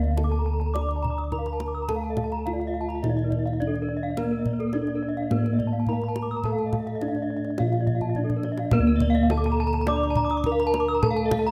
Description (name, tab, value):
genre	Balinese gamelan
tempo	105 BPM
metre	4/4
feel	straight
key	D pelog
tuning	A4 = 441 Hz
part	gamelan-type bronze metallophone	melody	0.0-11.5 s	Bb3 to D5	-30 LUFS	equal	none
part	gamelan-type bronze metallophone	accompaniment	0.0-11.5 s	Eb3+35c to D4	-36 LUFS	equal	none
part	gamelan-type bronze metallophone	arpeggios	0.0-11.5 s	Bb4 to Eb6+35c	-36 LUFS	equal	none
part	gamelan-type bronze metallophone	arpeggios	0.0-11.5 s	A4 to Eb6+35c	-36 LUFS	equal	none
part	gamelan-type bossed gongs	bass	0.0-11.5 s	D2 to Bb4	-30 LUFS	equal	none
part	kendang	percussion	0.0-11.5 s	none	-32 LUFS	equal	none
room	light reverb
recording	close, detailed microphones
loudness	-25 LUFS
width	mono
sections	0.0-11.5 A section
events	drum fill 8.0-8.7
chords	none